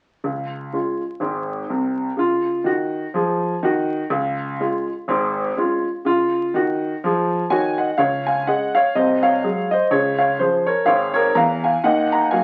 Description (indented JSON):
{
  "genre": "jazz, stride piano",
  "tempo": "124 BPM",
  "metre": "4/4",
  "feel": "swing 58% on 8ths",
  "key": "Db major",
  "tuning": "A4 = 440 Hz",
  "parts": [
    { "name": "warm grand piano", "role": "solo", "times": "0.2-12.4 s", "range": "Ab1 to Bb5", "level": "-20 LUFS", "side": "equal", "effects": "none" }
  ],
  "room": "wet club reverb, RT60 0.6 s",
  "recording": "very old 78 rpm record, vinyl crackle",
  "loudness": "-20 LUFS",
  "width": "mono",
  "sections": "0.3-8.0 A section; 8.0-12.4 B section",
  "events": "none",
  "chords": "0.3 Db; 2.2 Ebm7/Db; 4.1 Db; 6.0 Gb5/Db; 8.9 Ab7/C; 9.9 Db; 11.8 Ebm",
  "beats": "| 0.26 0.74 1.22 1.70 | 2.19 2.67 3.15 3.63 | 4.12 4.60 5.08 5.56 | 6.05 6.53 7.01 7.50 | 7.98 8.46 8.94 9.43 | 9.91 10.39 10.87 11.36 | 11.84 12.32"
}